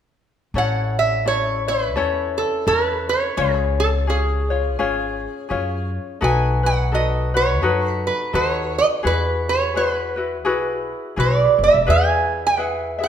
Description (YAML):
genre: Hawaiian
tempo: 85 BPM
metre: 4/4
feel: swing 59% on 8ths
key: A major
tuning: A4 = 440 Hz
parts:
  - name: upright bass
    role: bass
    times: 0.5-13.1 s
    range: E1 to F#2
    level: -23 LUFS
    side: equal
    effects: none
  - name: lap resonator guitar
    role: melody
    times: 0.6-13.1 s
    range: G#4 to G#5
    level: -20 LUFS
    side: right 3 dB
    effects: none
  - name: ukulele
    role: accompaniment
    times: 0.6-13.1 s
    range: C#4 to E5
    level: -23 LUFS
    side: left 5 dB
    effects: none
room: wet recital hall reverb, RT60 1.7 s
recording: minimal, uncompressed stereo recording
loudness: -17 LUFS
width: side -9 dB against mid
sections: 0.6-13.1 A section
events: none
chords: 0.6 A; 3.4 C#; 6.2 B7; 9.1 Eadd9; 11.9 E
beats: | 0.56 1.27 1.97 2.68 | 3.39 4.10 4.80 5.51 | 6.22 6.93 7.64 8.34 | 9.05 9.76 10.47 11.18 | 11.88 12.59